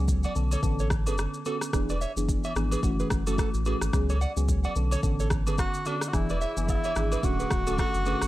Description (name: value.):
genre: afrobeats.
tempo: 109 BPM.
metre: 4/4.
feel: swing 58% on 16ths.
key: unclear.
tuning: A4 = 440 Hz.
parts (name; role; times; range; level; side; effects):
mellow FM electric piano; accompaniment; 0.0-8.3 s; D3 to A4; -32 LUFS; equal; chorus, phaser.
saturated sub bass; bass; 0.0-8.3 s; D1 to C#2; -28 LUFS; equal; none.
afro-pop drum kit; drums; 0.1-8.3 s; kick drum, rim click, shaker; -29 LUFS; equal; none.
nylon-string guitar; riff; 0.2-8.2 s; F#4 to F#5; -36 LUFS; right 5 dB; tape echo.
agogo bells and woodblock; percussion; 0.2-8.2 s; none; -38 LUFS; left 3 dB; none.
breathy tenor saxophone; melody; 5.6-8.3 s; D4 to F#4; -31 LUFS; equal; tape echo.
airy breathy pad; sustained chords; 6.1-8.3 s; G#4 to D6; -40 LUFS; left 1 dB; chorus, sidechain pumping.
room: small room ambience.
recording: none.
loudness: -24 LUFS.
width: side -16 dB against mid.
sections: 0.0-6.1 A section; 6.1-8.3 B section.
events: none.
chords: 0.4 Bm9; 1.7 E7; 2.8 F#m7; 3.9 C#7sus4; 4.8 Bm9; 6.1 E7; 7.2 Dmaj7.